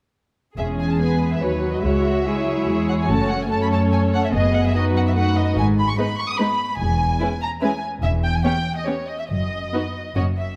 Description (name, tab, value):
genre	quick classical-period movement for string orchestra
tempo	144 BPM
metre	3/4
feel	rubato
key	E major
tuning	A4 = 440 Hz
part	muted studio violin section	melody	0.6-10.6 s	C#5 to D#6	-28 LUFS	equal	none
part	muted studio violin section	second line	0.6-10.2 s	D#4 to D#5	-30 LUFS	equal	none
part	muted studio viola section	accompaniment	0.6-10.2 s	F#3 to F#4	-26 LUFS	equal	none
part	muted studio cello section	bass	0.6-10.5 s	C#2 to G#2	-26 LUFS	equal	none
part	muted studio double bass section	bass	0.6-10.5 s	E1 to C#2	-27 LUFS	equal	none
room	moderate concert hall reverb, RT60 1.9 s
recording	none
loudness	-21 LUFS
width	mono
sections	0.6-10.6 A section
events	none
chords	0.6 E; 1.8 C#m; 3.1 F#m; 4.3 B7/F#; 5.6 G#m; 6.8 C#m/E; 8.0 C#m7b5/E; 9.3 B/F# (rootless)